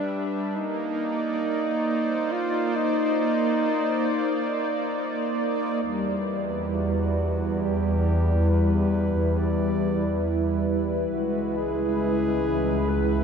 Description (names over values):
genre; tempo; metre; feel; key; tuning
ambient; 68 BPM; 3/4; straight; unclear; A4 = 440 Hz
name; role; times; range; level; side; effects
mellow flugelhorn; melody; 0.0-13.2 s; D4 to D5; -30 LUFS; left 1 dB; tape echo
warm analog pad; sustained chords; 0.0-13.2 s; G3 to E5; -25 LUFS; right 1 dB; chorus, tremolo
clear chamber double bass section; bass; 5.8-13.2 s; C#2 to E2; -26 LUFS; equal; none
organ-like drone; drone; 9.4-13.2 s; E3; -41 LUFS; right 1 dB; none
room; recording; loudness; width
wet huge ambient reverb, RT60 8.0 s; in a vast, echoing space, cassette tape; -22 LUFS; side -6 dB against mid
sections
0.0-5.8 A section; 5.8-13.2 B section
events
fade-in on flugelhorn 5.8-13.2; filter sweep on analog synth pad 5.8-13.2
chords
0.0 G6; 0.5 Cm9; 5.8 Em7; 11.1 C#m7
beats
| 0.54 1.42 2.30 | 3.19 4.07 4.95 | 5.83 6.71 7.60 | 8.48 9.36 10.24 | 11.13 12.01 12.89